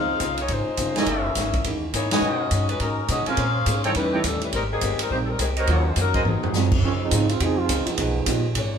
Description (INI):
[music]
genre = jazz, big band swing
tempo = 208 BPM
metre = 4/4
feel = swing 62% on 8ths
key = Ab major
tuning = A4 = 440 Hz
[part]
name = warm saxophone section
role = melody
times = 0.0-6.7 s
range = Eb3 to F5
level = -26 LUFS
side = left 3 dB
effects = none
[part]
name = dark upright piano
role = accompaniment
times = 0.0-8.4 s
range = Fb3 to G4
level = -30 LUFS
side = right 5 dB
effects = none
[part]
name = fingerpicked old ladder-braced acoustic guitar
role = accompaniment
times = 0.0-8.8 s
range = Gb2 to C#5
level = -31 LUFS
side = left 3 dB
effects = none
[part]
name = upright bass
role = bass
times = 0.0-8.8 s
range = Gb1 to Db3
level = -26 LUFS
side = equal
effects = none
[part]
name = swinging big-band drum kit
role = drums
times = 0.2-8.6 s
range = crash cymbal, hi-hat, kick drum, ride cymbal, snare drum, toms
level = -26 LUFS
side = right 1 dB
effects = none
[part]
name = warm trumpet section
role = stabs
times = 1.0-6.2 s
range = C#4 to Ab5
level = -28 LUFS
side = right 3 dB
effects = none
[part]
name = warm trombone section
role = second line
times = 6.9-8.4 s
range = Eb3 to Ab4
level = -25 LUFS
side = right 6 dB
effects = none
[sound]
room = moderate large studio reverb, RT60 0.9 s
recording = band playing live in one room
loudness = -20 LUFS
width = side -7 dB against mid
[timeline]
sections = 0.0-6.8 A section; 6.8-8.8 B section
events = band accent 2.1; drum fill 6.3; trombone section solo 6.8-8.8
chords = 0.0 Dbmaj9; 1.1 Gb13; 2.2 B69; 3.4 Bbm9; 4.0 A7#11; 4.5 Abmaj9; 5.7 Ebm7; 6.3 Ab7; 6.8 Dbmaj9; 8.0 Fm7b5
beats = 0.20 0.49 0.78 | 1.07 1.36 1.65 1.94 | 2.23 2.51 2.80 3.09 | 3.38 3.67 3.95 4.24 | 4.53 4.82 5.10 5.39 | 5.68 5.97 6.25 6.54 | 6.83 7.12 7.40 7.69 | 7.97 8.26 8.55